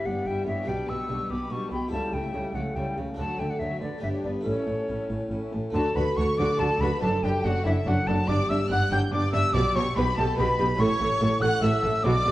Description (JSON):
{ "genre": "classical, baroque-style concerto movement with solo episodes", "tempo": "143 BPM", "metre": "3/4", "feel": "straight", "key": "D major", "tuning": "A4 = 440 Hz", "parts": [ { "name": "clear chamber violin section", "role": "melody", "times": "0.0-12.3 s", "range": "A4 to G6", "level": "-37 LUFS", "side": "left 2 dB", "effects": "none" }, { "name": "silver concert flute", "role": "melody", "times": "0.0-12.3 s", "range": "C#5 to G6", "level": "-30 LUFS", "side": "left 1 dB", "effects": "none" }, { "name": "rich chamber violin section", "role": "second line", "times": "0.0-12.3 s", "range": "C#4 to G5", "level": "-34 LUFS", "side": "left 2 dB", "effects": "none" }, { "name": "harpsichord", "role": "accompaniment", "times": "0.0-12.3 s", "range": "F#2 to B4", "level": "-31 LUFS", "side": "equal", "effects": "none" }, { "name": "rich chamber viola section", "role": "accompaniment", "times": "0.0-12.3 s", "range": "F#3 to A4", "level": "-32 LUFS", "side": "equal", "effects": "none" }, { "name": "dark chamber double bass section", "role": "bass", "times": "0.0-12.3 s", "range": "F#1 to D2", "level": "-30 LUFS", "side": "right 1 dB", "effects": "none" }, { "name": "rich chamber cello section", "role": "bass", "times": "0.1-12.3 s", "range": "F#2 to D3", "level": "-30 LUFS", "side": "right 1 dB", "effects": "none" } ], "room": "wet recital hall reverb, RT60 1.7 s", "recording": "worn, warbling old tape, cassette tape, warbly pitch drift", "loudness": "-23 LUFS", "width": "side -16 dB against mid", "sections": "0.0-5.7 A section; 5.7-12.3 B section", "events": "none", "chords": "0.0 Em/G; 0.7 G/B; 1.9 A7/C#; 3.2 D; 4.0 G; 4.5 A; 5.7 D; 7.0 D/F#; 8.3 G; 9.5 G/B; 10.8 A" }